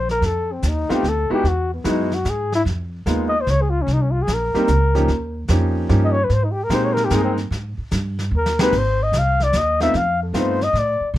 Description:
jazz, small-group swing and bop; 148 BPM; 3/4; swing 66% on 8ths; Ab major; A4 = 439 Hz
breathy flugelhorn; melody; 0.0-11.1 s; B3 to F5; -21 LUFS; left 2 dB
upright bass; bass; 0.0-11.2 s; Ab1 to B2; -21 LUFS; equal
vintage brush drum kit; drums; 0.1-11.2 s; brushed snare drum, crash cymbal, hi-hat, kick drum, snare drum; -28 LUFS; equal
warm grand piano; accompaniment; 0.9-10.6 s; F3 to Bb4; -21 LUFS; right 1 dB
light reverb; close, detailed microphones; -17 LUFS; side -14 dB against mid
0.0-8.7 A section; 8.7-11.2 A section
flugelhorn solo 0.0-11.2; drum fill 8.3-8.7
0.2 F7#11; 1.4 Emaj9; 2.7 Db13; 3.9 Cm7; 5.1 Eb7; 6.3 Abmaj9; 8.7 Ab; 9.9 F7#11
| 0.23 0.63 1.04 | 1.44 1.85 2.25 | 2.66 3.06 3.47 | 3.88 4.28 4.68 | 5.09 5.49 5.90 | 6.30 6.71 7.11 | 7.52 7.92 8.32 | 8.73 9.13 9.54 | 9.94 10.35 10.75 | 11.15

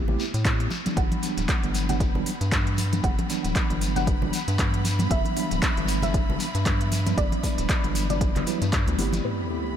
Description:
deep house; 116 BPM; 4/4; swing 57% on 16ths; A4 = 441 Hz
mellow tine electric piano; stabs; 0.0-9.8 s; E3 to G4; -29 LUFS; right 1 dB; medium stereo tremolo, sidechain pumping, low-pass filter, tape echo
rubbery square bass; bass; 0.0-9.2 s; D1 to A2; -27 LUFS; equal
congas; percussion; 0.1-9.2 s; -35 LUFS; right 2 dB
shekere; percussion; 0.2-9.2 s; -38 LUFS; left 4 dB
deep house drum kit; drums; 0.3-9.2 s; handclaps, hi-hat; -32 LUFS; equal
electronic kick drum; drums; 0.5-8.8 s; -26 LUFS; equal
soft round pluck; melody; 1.0-9.6 s; B4 to F#5; -34 LUFS; equal; analog chorus, tape echo
clear studio violin section; texture; 1.0-9.8 s; B5; -38 LUFS; left 2 dB
soft string machine; sustained chords; 9.4-9.8 s; A3 to B5; -36 LUFS; left 1 dB; ensemble chorus, sidechain pumping
sub drop; sound effects; 9.2-9.8 s; -32 LUFS; equal
light reverb, digital ambience; -22 LUFS; side -9 dB against mid
0.0-9.2 A section
impact 9.2-9.8
0.0 Am9; 0.7 Em9; 9.2 Am9
0.45 | 0.97 1.49 2.00 2.52 | 3.04 3.56 4.07 4.59 | 5.11 5.62 6.14 6.66 | 7.18 7.69 8.21 8.73 | 9.24 9.76

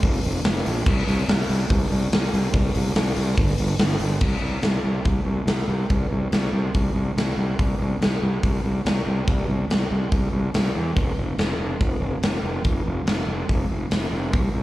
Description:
blues rock power trio and southern rock; 142 BPM; 4/4; straight; A4 = 440 Hz
fuzz fingered electric bass; bass; 0.0-14.6 s; F1 to E2; -23 LUFS; equal; overdrive
big rock drum kit; drums; 0.0-14.4 s; crash cymbal, hi-hat, kick drum, snare drum; -23 LUFS; equal
little or no reverb; live gig heard through the venue's PA, club reverb; -20 LUFS; side -16 dB against mid
0.0-4.2 A section; 4.2-14.6 B section
0.04 0.46 | 0.87 1.29 1.71 2.12 | 2.54 2.96 3.38 3.80 | 4.22 4.64 5.06 5.48 | 5.90 6.32 6.74 7.17 | 7.59 8.01 8.43 8.85 | 9.28 9.70 10.12 10.54 | 10.96 11.39 11.81 12.23 | 12.65 13.07 13.49 13.92 | 14.34

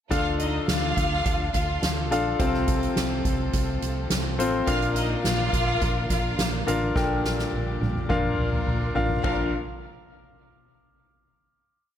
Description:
piano-driven pop; 105 BPM; 4/4; straight; Bb major; A4 = 441 Hz
warm studio violin section; second line; 0.1-9.5 s; D4 to F5; -29 LUFS; left 1 dB; ping-pong delay
clear concert grand piano; accompaniment; 0.1-9.5 s; Bb1 to G5; -27 LUFS; left 3 dB
warm studio string section; sustained chords; 0.1-9.5 s; C3 to Bb4; -37 LUFS; right 1 dB
vintage muted fingered electric bass; bass; 0.1-9.5 s; A1 to D2; -29 LUFS; right 1 dB
soft-mallet drum kit; drums; 0.1-9.4 s; hi-hat, kick drum, ride cymbal, snare drum, toms; -28 LUFS; right 1 dB
light reverb, studio reverb; -22 LUFS; side -10 dB against mid
0.1-9.2 chorus; 9.2-11.5 final chord
drum fill 7.0-9.2
0.1 Dm; 2.4 F/C; 4.7 Bb; 7.0 Gmadd9/Bb; 8.1 Bb
| 0.11 0.68 1.25 1.82 | 2.40 2.96 3.54 4.11 | 4.68 5.25 5.82 6.39 | 6.96 7.53 8.10 8.67 | 9.24

